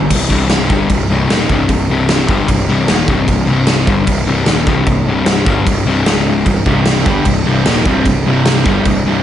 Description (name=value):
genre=heavy metal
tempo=151 BPM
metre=4/4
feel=straight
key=C minor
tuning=A4 = 440 Hz
part: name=distorted electric guitar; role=riff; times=0.0-0.1, 6.5-9.2 s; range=C2 to G3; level=-20 LUFS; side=right 9 dB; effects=distortion
part: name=sludgy distorted guitar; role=riff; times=0.0-9.2 s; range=C2 to G3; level=-14 LUFS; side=left 4 dB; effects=overdrive
part: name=fuzz picked electric bass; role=bass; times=0.0-9.2 s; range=C1 to G1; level=-18 LUFS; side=right 1 dB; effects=overdrive
part: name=big rock drum kit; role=drums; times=0.1-9.0 s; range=crash cymbal, kick drum, snare drum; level=-15 LUFS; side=right 1 dB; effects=none
room=light reverb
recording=nothing above 10.8 kHz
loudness=-11 LUFS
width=side -10 dB against mid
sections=0.1-9.2 A section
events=none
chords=0.1 Cm; 6.1 Db5; 6.5 Cm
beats=| 0.11 0.51 0.90 1.30 | 1.70 2.09 2.49 2.89 | 3.29 3.68 4.08 4.48 | 4.88 5.28 5.67 6.07 | 6.47 6.87 7.27 7.67 | 8.07 8.47 8.87